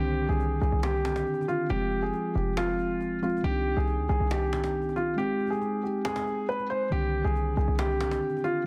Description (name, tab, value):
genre	hip hop, trap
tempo	138 BPM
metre	4/4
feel	half-time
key	C minor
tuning	A4 = 440 Hz
part	dark baby grand piano	melody	0.0-8.6 s	F4 to C5	-31 LUFS	equal	digital delay
part	muted felt-like synth keys	accompaniment	0.0-8.7 s	D3 to F4	-35 LUFS	equal	chorus
part	short 808-style bass	bass	0.0-8.2 s	F1 to D2	-31 LUFS	equal	none
part	cajon	drums	0.4-8.5 s	none	-41 LUFS	equal	none
room	light reverb, studio ambience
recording	dense, heavily limited modern master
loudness	-28 LUFS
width	mono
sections	0.0-8.7 A section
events	kick muted 5.2-6.9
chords	0.0 Cmadd9; 1.7 Fm; 3.4 Cmadd9; 5.2 Ab; 6.9 Cmadd9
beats	0.40 0.83 1.27 | 1.70 2.14 2.57 3.01 | 3.44 3.88 4.31 4.75 | 5.18 5.62 6.05 6.48 | 6.92 7.35 7.79 8.22 | 8.66